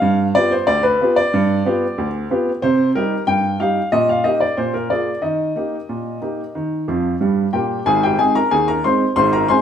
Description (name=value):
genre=ragtime piano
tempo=92 BPM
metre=2/4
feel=straight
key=Eb major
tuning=A4 = 441 Hz
part: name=warm upright piano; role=solo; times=0.0-9.6 s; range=Ab1 to C6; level=-15 LUFS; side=equal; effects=none
room=wet stone room reverb, RT60 1.0 s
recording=band playing live in one room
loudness=-16 LUFS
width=side -8 dB against mid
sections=0.0-7.9 A section; 7.9-9.6 B section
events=upright piano fill 6.9-7.9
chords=0.0 G7; 2.6 Cm; 3.9 Eb/Bb; 4.6 Bb7; 5.2 Eb; 7.9 Ab